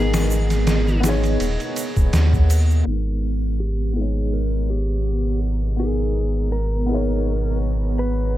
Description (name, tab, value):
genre	trip hop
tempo	82 BPM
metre	4/4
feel	swing 55% on 16ths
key	G# harmonic minor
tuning	A4 = 441 Hz
part	electric slide guitar	melody	0.0-8.4 s	G4 to B4	-30 LUFS	left 1 dB	tape echo
part	dark upright piano	accompaniment	0.0-8.4 s	G#3 to C#5	-28 LUFS	left 2 dB	tremolo, tape echo
part	string machine, cellos	sustained chords	0.0-8.4 s	B3 to A#5	-29 LUFS	equal	ensemble chorus
part	round analog bass	bass	0.0-8.4 s	D#1 to D#2	-20 LUFS	equal	tube saturation
part	trip hop sampler-style drum kit	drums	0.1-2.7 s	kick drum, ride cymbal, snare drum	-23 LUFS	equal	studio reverb
part	triangle and egg shaker	percussion	0.1-2.8 s	none	-35 LUFS	right 4 dB	none
room	digital ambience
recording	low-pass filter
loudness	-18 LUFS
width	side -14 dB against mid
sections	0.0-2.9 A section; 2.9-8.4 B section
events	none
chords	0.0 G#madd9